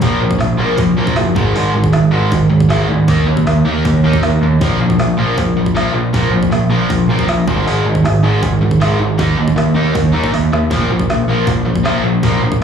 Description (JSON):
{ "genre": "punk rock", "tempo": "157 BPM", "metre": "4/4", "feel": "straight", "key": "unclear", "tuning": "A4 = 440 Hz", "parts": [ { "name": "distorted electric guitar", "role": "riff", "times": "0.0-12.6 s", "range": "Ab2 to Eb4", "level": "-14 LUFS", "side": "right 1 dB", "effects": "overdrive, slapback echo" }, { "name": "growling picked electric bass", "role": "bass", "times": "0.0-12.6 s", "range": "Gb1 to Eb2", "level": "-16 LUFS", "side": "equal", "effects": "overdrive" }, { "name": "organic electronic drum kit", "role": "drums", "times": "0.0-12.6 s", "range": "hi-hat, kick drum, snare drum", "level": "-19 LUFS", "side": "equal", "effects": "none" } ], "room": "light reverb", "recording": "live gig heard through the venue's PA, club reverb, studio reverb", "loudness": "-11 LUFS", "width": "side -7 dB against mid", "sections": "0.0-12.6 A section", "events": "drum fill 10.3-10.7", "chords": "0.0 Bb5; 1.4 Ab5; 3.1 Eb5; 4.6 Bb5; 7.5 Ab5; 9.2 Eb5; 10.7 Bb5" }